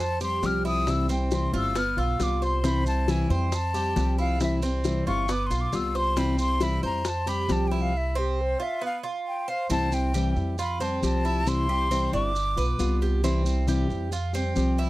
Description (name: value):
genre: latin, Cuban son and guajira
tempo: 136 BPM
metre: 4/4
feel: straight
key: C major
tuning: A4 = 441 Hz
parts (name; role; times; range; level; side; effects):
- breathy concert flute; melody; 0.0-13.0 s; G4 to F6; -29 LUFS; left 1 dB; none
- nylon-string guitar; accompaniment; 0.0-14.9 s; C3 to G4; -28 LUFS; left 3 dB; none
- Cuban tres; arpeggios; 0.0-14.9 s; B3 to C5; -32 LUFS; right 3 dB; none
- upright bass; bass; 0.0-14.9 s; G1 to F2; -27 LUFS; equal; none
- maracas; percussion; 0.2-14.9 s; none; -41 LUFS; right 4 dB; none
- bongos; percussion; 0.4-7.9 s; none; -32 LUFS; left 4 dB; none
room: little or no reverb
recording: dark, warm production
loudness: -23 LUFS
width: side -17 dB against mid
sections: 0.0-9.7 A section; 9.7-14.9 B section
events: flute solo 0.0-9.7; stop 7.9-9.7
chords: 0.0 C; 1.8 G7; 2.6 C; 5.3 G7; 6.2 C; 8.8 G7/B; 9.7 C; 12.4 G7; 13.2 C